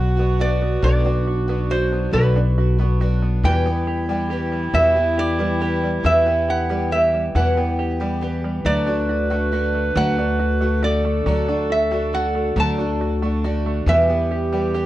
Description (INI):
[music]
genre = acoustic folk duo or small band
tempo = 46 BPM (dotted quarters)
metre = 6/8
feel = straight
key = unclear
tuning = A4 = 441 Hz
[part]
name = metal-body resonator slide guitar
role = melody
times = 0.0-14.7 s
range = B4 to A5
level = -22 LUFS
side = right 1 dB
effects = none
[part]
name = dark clarinet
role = second line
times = 0.0-14.9 s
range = E4 to B4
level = -27 LUFS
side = right 2 dB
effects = none
[part]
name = picked twelve-string acoustic guitar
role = accompaniment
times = 0.0-14.9 s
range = E2 to G4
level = -26 LUFS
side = left 1 dB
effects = none
[part]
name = open-back banjo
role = arpeggios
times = 0.0-14.9 s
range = D3 to G4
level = -29 LUFS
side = right 4 dB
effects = none
[part]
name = upright bass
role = bass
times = 0.0-14.9 s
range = B1 to E2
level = -21 LUFS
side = equal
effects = none
[sound]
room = light reverb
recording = worn, warbling old tape, cassette tape, warbly pitch drift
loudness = -17 LUFS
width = side -15 dB against mid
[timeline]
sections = 0.0-14.9 A section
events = none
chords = 0.0 Bm; 3.4 Em; 8.7 D; 13.9 Em